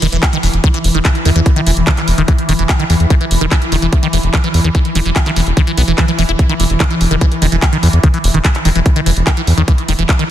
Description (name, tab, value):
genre	psychedelic trance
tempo	146 BPM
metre	4/4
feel	straight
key	unclear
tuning	A4 = 442 Hz
part	swarming drone	sustained chords	0.0-10.3 s	E3	-20 LUFS	equal	built-in reverb, sidechain pumping
part	liquid acid bass	riff	0.0-10.2 s	D#3 to E4	-18 LUFS	moving between left 4 dB and right 3 dB	phaser, auto-pan, sidechain pumping, tape echo
part	round analog bass	bass	0.0-10.0 s	E1 to E2	-13 LUFS	equal	none
part	garage drum kit	drums	0.0-10.3 s	handclaps, hi-hat	-20 LUFS	equal	none
part	electronic kick drum	drums	0.2-10.2 s	none	-12 LUFS	equal	none
part	riser	sound effects	9.7-10.3 s	none	barely audible	none	none
room	light reverb, digital ambience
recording	dense, heavily limited modern master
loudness	-11 LUFS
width	side -11 dB against mid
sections	0.0-10.3 A section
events	none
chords	0.0 E5